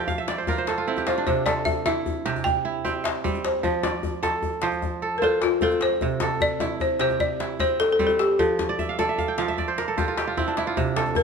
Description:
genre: west african traditional, West African string and xylophone music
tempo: 101 BPM (dotted quarters)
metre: 12/8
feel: straight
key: unclear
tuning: A4 = 443 Hz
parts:
  - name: balafon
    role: melody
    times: 0.0-11.2 s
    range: F4 to G5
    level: -23 LUFS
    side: left 2 dB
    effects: none
  - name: kora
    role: arpeggios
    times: 0.0-11.2 s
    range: C3 to G5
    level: -26 LUFS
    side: right 5 dB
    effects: none
  - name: djembe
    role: percussion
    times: 0.1-11.2 s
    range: none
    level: -29 LUFS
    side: left 5 dB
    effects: none
room: moderate recital hall reverb, RT60 1.6 s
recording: none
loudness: -22 LUFS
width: side -5 dB against mid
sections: 0.0-10.8 A section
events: kora fill 0.0-1.3, 8.7-10.8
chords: 0.0 F; 1.3 C; 3.6 F; 6.0 C; 8.4 F

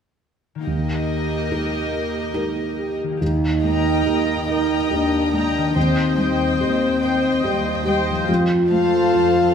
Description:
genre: cinematic, emotional film score for orchestra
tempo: 71 BPM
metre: 3/4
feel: rubato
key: Eb lydian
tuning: A4 = 441 Hz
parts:
  - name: concert harp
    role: arpeggios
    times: 0.6-9.5 s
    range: Eb3 to G4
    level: -31 LUFS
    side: left 6 dB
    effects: none
  - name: warm studio violin section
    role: second line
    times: 0.7-9.5 s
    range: Bb4 to Bb5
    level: -26 LUFS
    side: left 4 dB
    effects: none
  - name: felt-muted upright piano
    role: accompaniment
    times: 0.7-9.5 s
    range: Eb2 to C5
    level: -24 LUFS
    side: equal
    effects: none
  - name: warm chamber viola section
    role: accompaniment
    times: 0.7-9.5 s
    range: Bb3 to Eb5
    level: -27 LUFS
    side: right 2 dB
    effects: none
  - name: mellow French horn section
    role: sustained chords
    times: 2.8-9.5 s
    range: G3 to G4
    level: -20 LUFS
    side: equal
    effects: none
  - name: dark chamber cello section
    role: bass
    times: 3.2-9.5 s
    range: Eb2 to F2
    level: -27 LUFS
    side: right 3 dB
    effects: none
room: moderate scoring stage reverb, RT60 1.7 s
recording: minimal, uncompressed stereo recording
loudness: -18 LUFS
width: side -7 dB against mid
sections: 0.7-3.2 A section; 3.2-9.5 B section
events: none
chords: 0.7 Eb; 5.8 Cm/Eb; 8.3 F

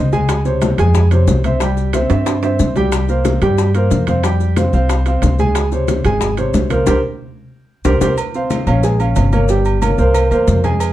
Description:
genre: latin, salsa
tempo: 183 BPM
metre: 4/4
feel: straight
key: unclear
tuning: A4 = 437 Hz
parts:
  - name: dark grand piano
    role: accompaniment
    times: 0.0-10.9 s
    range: C3 to Ab5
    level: -17 LUFS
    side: right 1 dB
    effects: none
  - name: upright bass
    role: bass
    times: 0.0-10.9 s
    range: G1 to G2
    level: -16 LUFS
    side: equal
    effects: none
  - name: congas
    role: percussion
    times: 0.1-10.9 s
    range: none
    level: -22 LUFS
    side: left 2 dB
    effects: none
  - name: maracas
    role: percussion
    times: 0.1-10.9 s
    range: none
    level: -34 LUFS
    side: left 6 dB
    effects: none
  - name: bongos and cowbell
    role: percussion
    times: 0.3-10.9 s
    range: none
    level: -24 LUFS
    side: left 4 dB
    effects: none
  - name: timbales and agogo bells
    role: percussion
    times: 0.3-10.9 s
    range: none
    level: -24 LUFS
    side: right 6 dB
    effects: none
room: light reverb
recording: dark, warm production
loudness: -13 LUFS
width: side -14 dB against mid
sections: 0.0-8.2 A section; 8.2-10.9 B section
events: drum fill 2.1-2.9, 6.9-8.2; band accent 6.9-8.2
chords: 0.3 Dbmaj7; 1.6 C; 2.9 C5; 4.2 Fmadd9; 5.6 Db5; 6.9 C5; 8.2 F5; 8.8 Bbm7; 9.5 Gdim; 10.1 C7

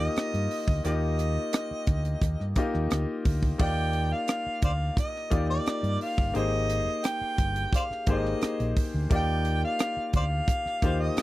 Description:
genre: lush 1970s-style soul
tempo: 87 BPM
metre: 4/4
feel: straight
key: Eb major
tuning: A4 = 441 Hz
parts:
  - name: warm harmonica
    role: melody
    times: 0.0-11.2 s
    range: C5 to G5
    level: -31 LUFS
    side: right 1 dB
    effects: none
  - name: bright baby grand piano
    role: accompaniment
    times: 0.0-11.2 s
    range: Bb3 to Eb5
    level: -32 LUFS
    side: left 3 dB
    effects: none
  - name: fingered electric bass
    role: bass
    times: 0.0-11.2 s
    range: G1 to G2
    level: -28 LUFS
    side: equal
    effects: none
  - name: tight funk drum kit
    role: drums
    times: 0.2-11.2 s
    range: crash cymbal, hi-hat, kick drum, rim click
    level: -27 LUFS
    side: equal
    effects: none
room: little or no reverb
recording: dry, close 1970s-style studio recording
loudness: -25 LUFS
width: side -17 dB against mid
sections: 0.0-3.6 A section; 3.6-11.2 A section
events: none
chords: 0.0 Ebmaj9; 6.3 Abmaj9; 9.1 Ebmaj9

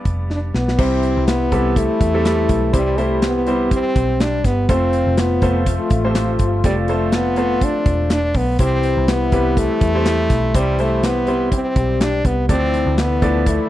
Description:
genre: piano-driven pop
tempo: 123 BPM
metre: 4/4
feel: swing 56% on 16ths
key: C major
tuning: A4 = 440 Hz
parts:
  - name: clear baby grand piano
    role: accompaniment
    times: 0.0-13.7 s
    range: G2 to D5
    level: -23 LUFS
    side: right 2 dB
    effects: none
  - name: vintage muted picked electric bass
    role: bass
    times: 0.1-13.6 s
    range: E1 to E2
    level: -21 LUFS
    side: equal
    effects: none
  - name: modern studio drum kit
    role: drums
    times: 0.1-13.6 s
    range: crash cymbal, handclaps, hi-hat, kick drum, snare drum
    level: -20 LUFS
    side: equal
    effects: none
  - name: clear French horn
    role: melody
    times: 0.3-13.7 s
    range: G3 to D4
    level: -20 LUFS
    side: equal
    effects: slapback echo
  - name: warm French horn section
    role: second line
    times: 0.8-13.7 s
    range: E3 to G4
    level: -26 LUFS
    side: left 8 dB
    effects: none
room: small room ambience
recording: dry, close 1970s-style studio recording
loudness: -15 LUFS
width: side -14 dB against mid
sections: 0.8-13.7 A section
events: drum fill 0.3-0.8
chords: 0.0 G; 0.8 C; 4.7 F; 8.6 C; 12.5 Dm

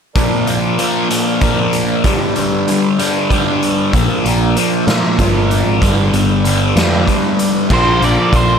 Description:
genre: psychedelic rock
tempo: 64 BPM (dotted quarters)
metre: 6/8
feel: straight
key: Bb major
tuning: A4 = 440 Hz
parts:
  - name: hand-pumped harmonium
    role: sustained chords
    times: 0.2-8.6 s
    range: D3 to D5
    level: -22 LUFS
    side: right 4 dB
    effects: none
  - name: fuzz guitar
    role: riff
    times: 0.2-8.6 s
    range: G2 to Bb3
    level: -15 LUFS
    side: left 1 dB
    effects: distortion, phaser
  - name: raw garage drum kit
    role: drums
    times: 0.2-8.5 s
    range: crash cymbal, hi-hat, kick drum, snare drum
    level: -18 LUFS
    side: equal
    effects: none
  - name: growling picked electric bass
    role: bass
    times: 3.9-8.6 s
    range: G1 to Bb2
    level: -16 LUFS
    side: equal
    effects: overdrive
  - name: octave-fuzz lead guitar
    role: melody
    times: 7.7-8.6 s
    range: C5 to D5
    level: -15 LUFS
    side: right 1 dB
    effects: distortion, slapback echo
room: light reverb, studio reverb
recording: none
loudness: -12 LUFS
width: side -7 dB against mid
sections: 0.2-7.7 A section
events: none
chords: 0.2 Bb; 2.1 G; 3.9 Bb; 5.8 G; 7.7 Bb

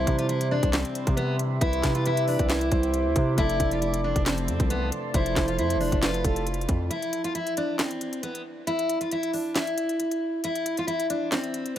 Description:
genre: hip hop, trap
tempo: 136 BPM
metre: 4/4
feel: half-time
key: unclear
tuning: A4 = 440 Hz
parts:
  - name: picked steel-string acoustic guitar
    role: melody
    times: 0.0-11.8 s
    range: B3 to F4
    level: -27 LUFS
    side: left 1 dB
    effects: low-pass filter, tape echo
  - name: breathy flute-like synth lead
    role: second line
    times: 0.0-6.5 s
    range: A4 to D5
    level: -33 LUFS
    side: right 4 dB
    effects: chorus, tape echo
  - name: soft electric-piano-like synth keys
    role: accompaniment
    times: 0.0-6.9 s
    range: C3 to A4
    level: -35 LUFS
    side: left 3 dB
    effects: chorus, low-pass filter
  - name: deep dark ambient pad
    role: sustained chords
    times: 0.0-6.9 s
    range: F3 to D6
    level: -37 LUFS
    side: right 2 dB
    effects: chorus, built-in reverb
  - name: distorted 808-style bass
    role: bass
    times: 0.0-6.9 s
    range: F1 to C3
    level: -28 LUFS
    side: equal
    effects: distortion
  - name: trap drum kit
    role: drums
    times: 0.1-11.8 s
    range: handclaps, hi-hat, kick drum, snare drum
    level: -27 LUFS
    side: equal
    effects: none
room: little or no reverb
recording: none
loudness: -23 LUFS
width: side -11 dB against mid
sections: 0.0-6.9 A section; 6.9-11.8 B section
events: break 6.9-11.8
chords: 0.0 Cmaj7; 3.4 F6; 6.9 N.C.

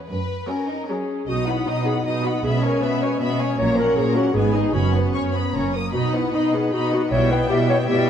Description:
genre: classical, dramatic, fast romantic movement for symphony orchestra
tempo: 155 BPM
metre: 3/4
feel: rubato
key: B major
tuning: A4 = 440 Hz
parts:
  - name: warm symphonic violin section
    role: melody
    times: 0.1-8.1 s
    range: A#4 to D#6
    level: -33 LUFS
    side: left 4 dB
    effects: none
  - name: rich symphonic cello section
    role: bass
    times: 0.1-8.1 s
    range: F#2 to B2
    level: -24 LUFS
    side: right 4 dB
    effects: none
  - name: warm symphonic violin section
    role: second line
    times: 0.5-8.1 s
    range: C#4 to G5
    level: -28 LUFS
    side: left 3 dB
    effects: none
  - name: rich symphonic viola section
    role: accompaniment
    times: 0.5-8.1 s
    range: F#3 to D#4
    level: -27 LUFS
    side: equal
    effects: none
  - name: mellow clarinet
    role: second line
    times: 0.9-8.1 s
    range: D#4 to C#5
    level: -24 LUFS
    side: left 1 dB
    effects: none
  - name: mellow French horn section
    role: sustained chords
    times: 1.3-8.1 s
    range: F#3 to E4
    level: -26 LUFS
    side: left 4 dB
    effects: none
  - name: warm symphonic double bass section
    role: bass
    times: 1.3-7.4 s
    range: F#1 to B1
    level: -27 LUFS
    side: right 3 dB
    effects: none
room: wet scoring stage reverb, RT60 1.7 s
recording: none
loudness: -19 LUFS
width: side -8 dB against mid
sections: 0.0-1.3 A section; 1.3-8.1 B section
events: none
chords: 0.1 F#; 1.3 B; 2.4 C#m7/B; 3.6 F#/A#; 4.3 G#m; 4.7 F#sus4; 5.5 F#; 5.9 B; 7.1 Em/B

